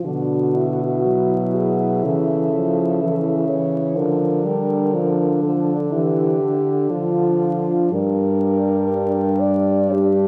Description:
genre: classical, lyrical piece for horn quartet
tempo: 56-64 BPM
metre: 4/4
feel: rubato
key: D minor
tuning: A4 = 440 Hz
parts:
  - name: mellow French horn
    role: melody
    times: 0.0-10.3 s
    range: F4 to D5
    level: -24 LUFS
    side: equal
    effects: none
  - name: mellow French horn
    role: second line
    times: 0.0-10.3 s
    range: D4 to E4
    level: -28 LUFS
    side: equal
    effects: none
  - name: mellow French horn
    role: accompaniment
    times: 0.0-10.3 s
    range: D3 to G3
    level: -25 LUFS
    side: equal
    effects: none
  - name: mellow French horn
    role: bass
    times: 0.0-10.3 s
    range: G2 to D3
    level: -25 LUFS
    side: equal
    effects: none
room: wet recital hall reverb, RT60 1.4 s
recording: recorded in a church or concert hall, vinyl crackle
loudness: -19 LUFS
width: mono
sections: 0.0-10.3 A section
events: none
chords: 0.0 E5/B; 2.0 A/C#; 4.0 Dm; 7.9 Gm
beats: | 0.05 1.05 2.05 3.02 | 3.97 4.94 5.92 6.91 | 7.93 8.89 9.92

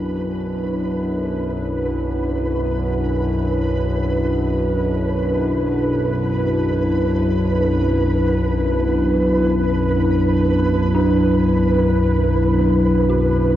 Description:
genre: dark ambient drone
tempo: free time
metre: none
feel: none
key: B minor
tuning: A4 = 440 Hz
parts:
  - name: dark analog pad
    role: sustained chords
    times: 0.0-13.6 s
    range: D4 to B4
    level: -20 LUFS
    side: equal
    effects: chorus
  - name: analog drone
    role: drone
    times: 0.0-13.6 s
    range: B1 to F#2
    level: -19 LUFS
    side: equal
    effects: chorus
  - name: flickering grainy texture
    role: texture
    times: 0.0-13.6 s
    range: B4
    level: -28 LUFS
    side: right 3 dB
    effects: built-in reverb
  - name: dark detuned synth bell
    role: arpeggios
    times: 10.9-13.6 s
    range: D4 to F#4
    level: -25 LUFS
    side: right 2 dB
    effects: chorus, phaser, diffuse ambient delay
room: wet huge ambient reverb, RT60 7.9 s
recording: worn, warbling old tape, cassette tape, warbly pitch drift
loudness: -16 LUFS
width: side -12 dB against mid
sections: 0.0-13.6 A section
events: fade-in on synth texture 0.0-13.6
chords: 0.0 Bm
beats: free time

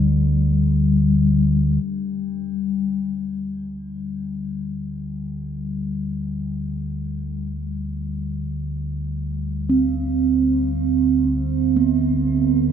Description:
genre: dark ambient drone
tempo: free time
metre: none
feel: none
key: unclear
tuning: A4 = 439 Hz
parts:
  - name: bronze singing bowl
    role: arpeggios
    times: 0.0-12.7 s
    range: G3 to C4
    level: -22 LUFS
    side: right 1 dB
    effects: diffuse ambient delay
  - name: deep rumbling drone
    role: drone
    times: 0.0-12.7 s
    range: D2 to D3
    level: -23 LUFS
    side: equal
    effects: built-in reverb
room: moderate huge ambient reverb, RT60 7.0 s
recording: none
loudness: -20 LUFS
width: side -8 dB against mid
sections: 0.0-1.8 A section; 1.8-12.7 B section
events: fade-in on synth drone 1.8-12.7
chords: 0.0 G5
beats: free time

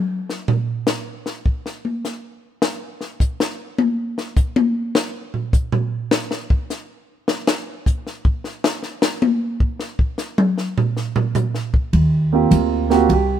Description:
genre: jazz piano trio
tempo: 103 BPM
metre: 4/4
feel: swing 67% on 8ths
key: unclear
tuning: A4 = 440 Hz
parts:
  - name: compact cocktail drum kit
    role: drums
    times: 0.3-13.3 s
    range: hi-hat, kick drum, ride cymbal, snare drum, toms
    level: -19 LUFS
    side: left 1 dB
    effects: none
  - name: upright bass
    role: bass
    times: 11.9-13.4 s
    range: C2 to Eb2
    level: -16 LUFS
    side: equal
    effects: none
  - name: warm concert grand piano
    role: melody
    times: 12.3-13.4 s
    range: Bb3 to G4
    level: -16 LUFS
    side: right 7 dB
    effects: none
room: light reverb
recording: minimal, uncompressed stereo recording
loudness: -18 LUFS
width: side -10 dB against mid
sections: 0.0-11.9 A section; 11.9-13.4 B section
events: drum solo 0.0-11.9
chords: 0.0 N.C.; 11.9 Eb69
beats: | 0.29 0.87 1.46 2.04 | 2.62 3.20 3.79 4.37 | 4.95 5.53 6.12 6.70 | 7.28 7.86 8.44 9.02 | 9.61 10.19 10.77 11.35 | 11.93 12.51 13.09

